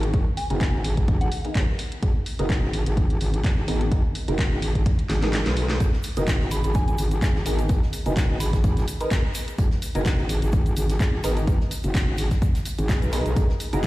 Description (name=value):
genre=bass house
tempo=127 BPM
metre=4/4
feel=swing 55% on 16ths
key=G# minor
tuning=A4 = 440 Hz
part: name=band-passed chord stab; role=stabs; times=0.0-13.8 s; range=B3 to B4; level=-32 LUFS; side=right 1 dB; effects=phaser, analog chorus, cassette tape, sidechain pumping, ping-pong delay
part: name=metallic wobble bass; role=bass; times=0.0-13.9 s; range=F#1 to B1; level=-24 LUFS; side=equal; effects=chorus, overdrive, sidechain pumping
part: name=garage drum kit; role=drums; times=0.0-13.9 s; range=handclaps, hi-hat, snare drum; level=-32 LUFS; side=equal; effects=none
part: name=electronic kick drum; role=drums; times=0.1-13.9 s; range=none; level=-22 LUFS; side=equal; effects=overdrive
part: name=soft synth bell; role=melody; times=0.4-1.6, 6.5-8.8 s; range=F#5 to B5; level=-36 LUFS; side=equal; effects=chorus, phaser, ping-pong delay
part: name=jazz brush drum kit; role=drums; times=5.8-13.9 s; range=hi-hat, snare drum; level=-43 LUFS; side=right 2 dB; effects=none
part: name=egg shaker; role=percussion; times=5.8-13.9 s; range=none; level=-44 LUFS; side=left 3 dB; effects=none
room=studio reverb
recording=played on a big sound system in a bare room, large studio reverb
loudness=-21 LUFS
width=side -17 dB against mid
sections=0.0-13.9 A section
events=filter sweep on synth stab 0.0-13.9; drum fill 5.1-5.8; kick drops out 5.3-5.8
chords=0.0 G#madd9